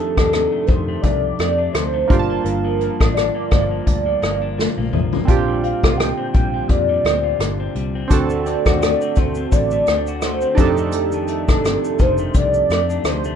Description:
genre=indie pop, bedroom pop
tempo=85 BPM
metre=4/4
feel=swing 55% on 16ths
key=unclear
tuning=A4 = 440 Hz
part: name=warm velvety synth lead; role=melody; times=0.0-13.4 s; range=A4 to G5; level=-21 LUFS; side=equal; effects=lush chorus, plate reverb, analog delay
part: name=electric guitar at the edge of break-up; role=accompaniment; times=0.0-13.4 s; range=F2 to F#4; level=-26 LUFS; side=left 6 dB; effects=wide subtle chorus, warbly pitch drift
part: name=warm analog keys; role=accompaniment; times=0.0-13.4 s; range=Bb3 to A5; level=-24 LUFS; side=right 7 dB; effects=chorus, cassette tape, plate reverb
part: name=vintage muted fingered electric bass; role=bass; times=0.2-13.3 s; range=F1 to F2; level=-25 LUFS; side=left 1 dB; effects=none
part: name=unplugged drum kit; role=drums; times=0.2-13.4 s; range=hi-hat, kick drum, rim click, shaker, snare drum, toms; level=-18 LUFS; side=left 1 dB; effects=none
room=light reverb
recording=rough home demo mix, nothing above 10.9 kHz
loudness=-16 LUFS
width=side -8 dB against mid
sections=0.0-13.4 A section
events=drum fill 4.6-5.3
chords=0.0 F13; 2.1 Gm7; 5.3 Bb69; 8.1 D7; 10.6 F13

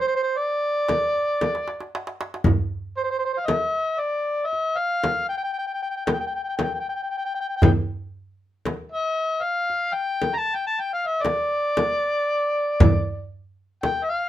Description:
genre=Arabic maqam ensemble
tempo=116 BPM (eighths)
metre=10/8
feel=straight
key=D maqam bayati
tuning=A4 = 440 Hz
part: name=overdriven harmonica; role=melody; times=0.0-14.3 s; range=C5 to Bb5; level=-23 LUFS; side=left 1 dB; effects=none
part: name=darbuka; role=percussion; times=0.9-14.1 s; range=none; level=-23 LUFS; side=right 2 dB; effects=none
part: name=frame drum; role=percussion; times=0.9-14.1 s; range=none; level=-22 LUFS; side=left 2 dB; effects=none
room=moderate studio reverb, RT60 0.6 s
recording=minimal, uncompressed stereo recording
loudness=-22 LUFS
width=side -13 dB against mid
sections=0.0-2.4 A section; 2.4-14.3 B section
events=drum fill 1.4-2.4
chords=none

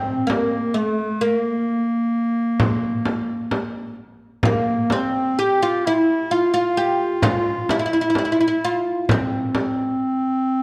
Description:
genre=Turkish makam ensemble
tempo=130 BPM (eighths)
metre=10/8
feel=straight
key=C makam hicaz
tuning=A4 = 441 Hz
part: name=oud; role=melody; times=0.0-10.6 s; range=A3-40c to G4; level=-23 LUFS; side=equal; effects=none
part: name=clear clarinet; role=second line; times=0.0-10.6 s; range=A3-42c to G4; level=-25 LUFS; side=equal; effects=none
part: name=frame drum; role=percussion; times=0.3-9.8 s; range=none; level=-25 LUFS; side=equal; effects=none
room=wet recital hall reverb, RT60 1.5 s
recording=dark, warm production, faint mains hum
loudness=-21 LUFS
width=mono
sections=0.0-10.6 A section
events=none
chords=none

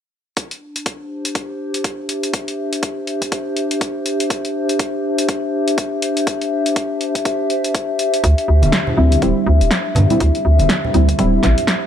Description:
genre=deep house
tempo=122 BPM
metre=4/4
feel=swing 59% on 16ths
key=unclear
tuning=A4 = 439 Hz
part: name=electronic kick drum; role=drums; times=0.4-11.8 s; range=none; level=-25 LUFS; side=equal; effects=high-pass filter on kick, high-pass filter on room
part: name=punchy analog drum machine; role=drums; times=0.4-11.8 s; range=hi-hat, snare drum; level=-22 LUFS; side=equal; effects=none
part: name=warbly tape-like pad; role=texture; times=0.4-11.9 s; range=D4 to E5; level=-20 LUFS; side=left 2 dB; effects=chorus, built-in reverb, sidechain pumping
part: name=hollow knocking FM bass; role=bass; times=8.2-11.5 s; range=D1 to G2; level=-14 LUFS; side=equal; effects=sidechain pumping
part: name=congas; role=percussion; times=8.6-11.6 s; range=none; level=-22 LUFS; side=right 2 dB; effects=sidechain pumping on perc
part: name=deep mellow chord stab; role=stabs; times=9.0-11.4 s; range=G3 to E4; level=-19 LUFS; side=right 1 dB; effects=chorus, sidechain pumping, tape echo
room=light reverb, digital ambience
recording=none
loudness=-16 LUFS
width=side -9 dB against mid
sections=0.4-11.9 A section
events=none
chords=0.4 Dsus2; 8.2 D7sus2

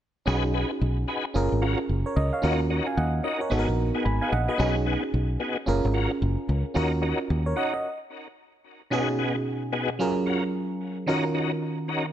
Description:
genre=R&B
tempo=111 BPM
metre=4/4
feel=swing 62% on 16ths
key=unclear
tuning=A4 = 440 Hz
part: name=FM electric piano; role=accompaniment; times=0.3-12.1 s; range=B2 to Cb6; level=-27 LUFS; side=right 2 dB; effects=chorus
part: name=tonewheel organ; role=stabs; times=0.3-12.1 s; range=Cb4 to B4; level=-30 LUFS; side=left 2 dB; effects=chorus vibrato, fast rotary speaker, digital delay
part: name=fingered electric bass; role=bass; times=0.3-7.5 s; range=Gb1 to Eb2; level=-25 LUFS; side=equal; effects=none
room=light reverb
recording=none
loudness=-24 LUFS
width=side -11 dB against mid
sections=0.3-8.9 A section; 8.9-12.1 B section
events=stop 7.8-8.9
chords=0.3 B6; 1.4 Gbmaj7; 2.4 Ebm7; 3.5 Abm7; 4.6 B6; 5.7 Gbmaj7; 6.8 Ebm7; 7.8 N.C.; 8.9 B6; 10.0 Gbmaj7; 11.1 Ebm7

